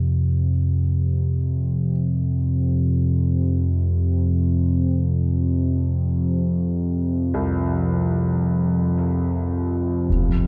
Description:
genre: dark ambient drone.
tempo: free time.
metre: none.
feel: none.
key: unclear.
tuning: A4 = 440 Hz.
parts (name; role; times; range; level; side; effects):
dark grand piano; arpeggios; 0.0-10.5 s; C2 to C4; -33 LUFS; equal; tape echo.
analog drone; drone; 0.0-10.5 s; F2 to C3; -21 LUFS; equal; chorus.
concert bass drum; percussion; 10.1-10.3 s; none; -22 LUFS; equal; low-pass filter on kick.
room: wet cathedral reverb, RT60 5.5 s.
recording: cassette tape.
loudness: -21 LUFS.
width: mono.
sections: 0.0-10.5 A section.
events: fade-in on grand piano 0.0-10.5.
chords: 0.0 F5.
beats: free time.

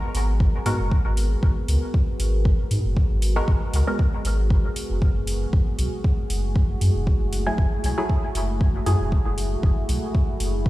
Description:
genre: dub techno.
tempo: 117 BPM.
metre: 4/4.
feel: swing 54% on 16ths.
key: unclear.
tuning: A4 = 440 Hz.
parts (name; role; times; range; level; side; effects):
deep dark ambient pad; sustained chords; 0.0-10.7 s; A3 to A#4; -31 LUFS; equal; chorus, built-in reverb, sidechain pumping.
warm sub bass; bass; 0.1-10.7 s; E1 to G#2; -23 LUFS; equal; sidechain pumping.
electronic hi-hat; drums; 0.1-10.5 s; none; -35 LUFS; equal; none.
electronic kick drum; drums; 0.4-10.7 s; none; -20 LUFS; equal; none.
filtered dub chord stab; stabs; 0.7-4.1, 7.5-9.2 s; F#3 to A#4; -29 LUFS; equal; chorus, phaser, sidechain pumping, dub echo.
room: little or no reverb.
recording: played on a big sound system in a bare room, stone room reverb.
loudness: -20 LUFS.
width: side -17 dB against mid.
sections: 0.0-10.7 A section.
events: none.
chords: 0.0 G#m9; 5.5 F#m9.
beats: 0.40 0.92 | 1.43 1.94 2.45 2.97 | 3.48 3.99 4.50 5.02 | 5.53 6.04 6.56 7.07 | 7.58 8.10 8.61 9.12 | 9.63 10.15 10.66.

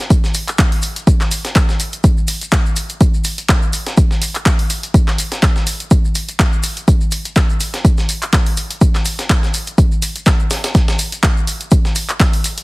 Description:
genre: house.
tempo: 124 BPM.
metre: 4/4.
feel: swing 55% on 16ths.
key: none.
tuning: none.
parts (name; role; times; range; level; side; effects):
breakbeat sampler-style drum kit; drums; 0.0-12.6 s; hi-hat, snare drum, tambourine; -25 LUFS; equal; high-pass filter on snare, studio reverb, high-pass filter on perc, high-pass filter on hats.
punchy analog drum machine; drums; 0.0-12.6 s; handclaps, hi-hat; -21 LUFS; equal; overdrive, studio reverb.
electronic kick drum; drums; 0.1-12.3 s; none; -13 LUFS; equal; overdrive, studio reverb.
maracas; percussion; 0.1-12.6 s; none; -28 LUFS; left 2 dB; none.
room: digital ambience.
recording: heavily compressed radio sound, multiband compression.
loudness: -13 LUFS.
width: side -24 dB against mid.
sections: 0.0-12.6 A section.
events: none.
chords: none.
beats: | 0.10 0.59 1.07 1.55 | 2.04 2.52 3.01 3.49 | 3.98 4.46 4.94 5.43 | 5.91 6.39 6.88 7.36 | 7.85 8.33 8.81 9.30 | 9.78 10.27 10.75 11.23 | 11.72 12.20.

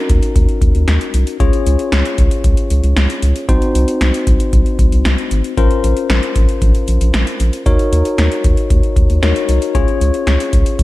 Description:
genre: synth-pop.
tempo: 115 BPM.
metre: 4/4.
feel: straight.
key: unclear.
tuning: A4 = 436 Hz.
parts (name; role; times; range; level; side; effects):
bell-like tine electric piano; accompaniment; 0.0-10.8 s; C4 to Db5; -19 LUFS; moving between left 8 dB and equal; auto-pan.
round analog bass; bass; 0.1-10.8 s; Ab1 to Eb2; -14 LUFS; equal; none.
electro analog drum machine; drums; 0.1-10.8 s; hi-hat, kick drum, snare drum; -15 LUFS; equal; gated reverb.
room: little or no reverb.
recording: lossy compression artefacts.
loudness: -12 LUFS.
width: side -17 dB against mid.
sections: 0.0-10.8 A section.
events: none.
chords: 0.0 Ebm7; 1.4 Db; 3.5 Cdim; 5.6 Bbmadd9; 7.7 Ebm7; 9.7 Db.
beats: 0.36 0.88 | 1.40 1.92 2.44 2.97 | 3.49 4.01 4.53 5.05 | 5.58 6.10 6.62 7.14 | 7.66 8.18 8.71 9.23 | 9.75 10.27 10.79.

